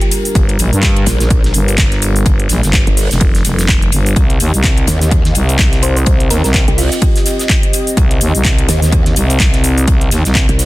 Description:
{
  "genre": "bass house",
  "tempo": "126 BPM",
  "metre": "4/4",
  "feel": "swing 58% on 16ths",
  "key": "unclear",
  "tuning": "A4 = 440 Hz",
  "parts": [
    { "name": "thumb-piano-like synth pluck", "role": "melody", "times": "0.0-0.1, 5.8-7.2 s", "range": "F4 to C5", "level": "-22 LUFS", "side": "right 1 dB", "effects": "chorus, cassette tape, tape echo" },
    { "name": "dark analog pad", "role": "sustained chords", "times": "0.0-10.7 s", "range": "G3 to Eb5", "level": "-23 LUFS", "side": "left 1 dB", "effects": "chorus, sidechain pumping" },
    { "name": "house drum kit", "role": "drums", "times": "0.0-10.7 s", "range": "handclaps, hi-hat, shaker", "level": "-18 LUFS", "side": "equal", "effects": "overdrive" },
    { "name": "damped 70s drum kit", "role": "drums", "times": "0.1-10.7 s", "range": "hi-hat, ride cymbal, snare drum", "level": "-26 LUFS", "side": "left 2 dB", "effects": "high-pass filter on cymbals, high-pass filter on hats, high-pass filter on snare, high-pass filter on room" },
    { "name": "growling FM bass", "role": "bass", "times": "0.4-10.5 s", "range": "F1 to G2", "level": "-14 LUFS", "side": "equal", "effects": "overdrive, sidechain pumping" },
    { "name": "electronic kick drum", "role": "drums", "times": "0.4-10.5 s", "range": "none", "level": "-13 LUFS", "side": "equal", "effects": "overdrive" },
    { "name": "growl bass", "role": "bass", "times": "1.1-10.7 s", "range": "G1 to Eb2", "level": "-13 LUFS", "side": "equal", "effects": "chorus, tube saturation, sidechain pumping" }
  ],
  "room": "little or no reverb",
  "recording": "dense, heavily limited modern master",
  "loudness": "-10 LUFS",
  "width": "side -18 dB against mid",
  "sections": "0.0-10.7 A section",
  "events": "none",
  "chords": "0.0 Gm; 4.2 Cm"
}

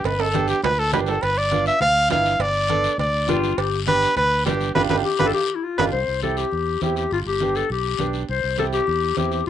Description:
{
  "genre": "latin, cumbia",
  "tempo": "204 BPM",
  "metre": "4/4",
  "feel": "straight",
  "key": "C major",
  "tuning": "A4 = 438 Hz",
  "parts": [
    { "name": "clear trumpet", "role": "melody", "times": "0.0-5.8 s", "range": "G4 to F5", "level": "-20 LUFS", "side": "equal", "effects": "none" },
    { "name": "fingered electric bass", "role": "bass", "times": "0.0-9.5 s", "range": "G1 to E2", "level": "-27 LUFS", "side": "equal", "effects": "none" },
    { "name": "guiro", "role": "percussion", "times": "0.0-9.5 s", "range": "none", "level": "-34 LUFS", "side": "left 12 dB", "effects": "none" },
    { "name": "congas", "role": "percussion", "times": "0.1-9.5 s", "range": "none", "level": "-31 LUFS", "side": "left 6 dB", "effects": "none" },
    { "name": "cowbell and timbales", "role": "percussion", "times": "0.1-5.9 s", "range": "none", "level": "-28 LUFS", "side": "right 10 dB", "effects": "none" },
    { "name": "bright upright piano", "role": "accompaniment", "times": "0.3-9.4 s", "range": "B3 to A4", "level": "-26 LUFS", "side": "right 9 dB", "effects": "cassette tape" },
    { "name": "growling clarinet", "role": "second line", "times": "3.3-9.5 s", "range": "E4 to C5", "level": "-22 LUFS", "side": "left 6 dB", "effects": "cassette tape" }
  ],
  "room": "moderate studio ambience, RT60 0.5 s",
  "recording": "home recording on cassette, nothing above 10.6 kHz",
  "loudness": "-18 LUFS",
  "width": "side -10 dB against mid",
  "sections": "0.0-5.9 A section; 5.9-9.5 B section",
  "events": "drum fill 0.0-1.2, 5.0-5.9; band accent 4.8-5.9; clarinet solo 5.9-9.5",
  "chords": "0.0 G; 5.9 C; 7.1 G; 8.3 C"
}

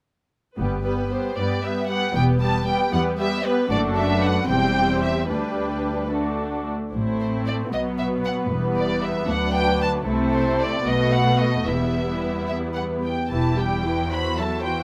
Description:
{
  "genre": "quick classical-period movement for string orchestra",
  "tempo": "76 BPM (dotted quarters)",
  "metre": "6/8",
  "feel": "rubato",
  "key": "G major, E minor from 6.9 s",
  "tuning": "A4 = 441 Hz",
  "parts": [
    { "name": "muted studio violin section", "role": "second line", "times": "0.6-14.8 s", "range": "B3 to E5", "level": "-31 LUFS", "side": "equal", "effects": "none" },
    { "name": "muted symphonic viola section", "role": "accompaniment", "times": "0.6-14.8 s", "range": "E3 to G4", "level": "-28 LUFS", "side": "equal", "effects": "none" },
    { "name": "muted studio cello section", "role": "bass", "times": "0.6-14.8 s", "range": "D2 to C3", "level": "-29 LUFS", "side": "equal", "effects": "none" },
    { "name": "muted studio double bass section", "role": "bass", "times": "0.6-13.8 s", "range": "E1 to D2", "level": "-30 LUFS", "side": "equal", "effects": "none" },
    { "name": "muted studio violin section", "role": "melody", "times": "0.9-14.8 s", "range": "B4 to B5", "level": "-28 LUFS", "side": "equal", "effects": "none" }
  ],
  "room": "moderate large studio reverb, RT60 0.9 s",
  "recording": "none",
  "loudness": "-23 LUFS",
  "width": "mono",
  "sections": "0.6-13.3 A section; 13.3-14.8 B section",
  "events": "none",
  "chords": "0.6 G; 2.2 Em; 3.7 D/F#; 4.5 C/E; 5.3 G/D; 6.1 D; 6.9 Am; 7.7 B5; 8.5 Em; 9.3 Bm/D; 10.1 Am/C; 10.8 B5; 11.7 Em; 14.1 F#m7b5/E"
}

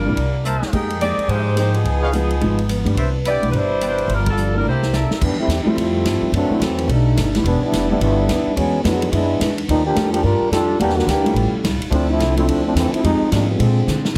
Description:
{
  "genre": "jazz, big band swing",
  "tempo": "215 BPM",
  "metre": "4/4",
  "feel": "swing 62% on 8ths",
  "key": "unclear",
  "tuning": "A4 = 439 Hz",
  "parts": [
    { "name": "warm saxophone section", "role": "melody", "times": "0.0-4.9 s", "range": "F3 to D5", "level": "-24 LUFS", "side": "equal", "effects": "plate reverb" },
    { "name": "picked steel-string acoustic guitar", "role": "accompaniment", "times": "0.0-14.1 s", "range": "F2 to A4", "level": "-30 LUFS", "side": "equal", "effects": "none" },
    { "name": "upright bass", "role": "bass", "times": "0.0-14.2 s", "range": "E1 to D3", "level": "-23 LUFS", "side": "equal", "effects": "none" },
    { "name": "warm upright piano", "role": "accompaniment", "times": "0.1-13.6 s", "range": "E3 to G4", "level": "-25 LUFS", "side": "equal", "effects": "none" },
    { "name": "swinging big-band drum kit", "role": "drums", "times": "0.2-14.2 s", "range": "crash cymbal, hi-hat, kick drum, ride cymbal, snare drum", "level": "-29 LUFS", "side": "equal", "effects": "none" },
    { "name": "mellow trumpet section", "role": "stabs", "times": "0.4-5.2 s", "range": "Ab4 to A5", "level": "-29 LUFS", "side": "equal", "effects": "none" },
    { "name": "warm trombone section", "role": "second line", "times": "5.2-14.0 s", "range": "D3 to Bb4", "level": "-22 LUFS", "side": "equal", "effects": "none" }
  ],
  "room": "light reverb",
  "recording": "heavily compressed radio sound",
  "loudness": "-18 LUFS",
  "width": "mono",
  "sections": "0.0-5.2 A section; 5.2-14.2 B section",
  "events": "drum fill 0.5, 4.7-5.2, 13.9; band accent 4.2; trombone section solo 5.2-14.2",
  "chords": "0.2 C7; 0.7 Fm11; 1.9 Db9; 3.0 Cmaj9; 4.1 Gm7; 4.7 C13; 5.2 Fmaj9; 6.3 F#m7b5; 6.9 B7alt; 7.5 Em7; 8.6 E9; 9.7 Ebmaj9#11; 10.8 Em7b5; 11.4 A7b13; 11.9 Dm9; 13.0 Fm7; 13.6 Bb9"
}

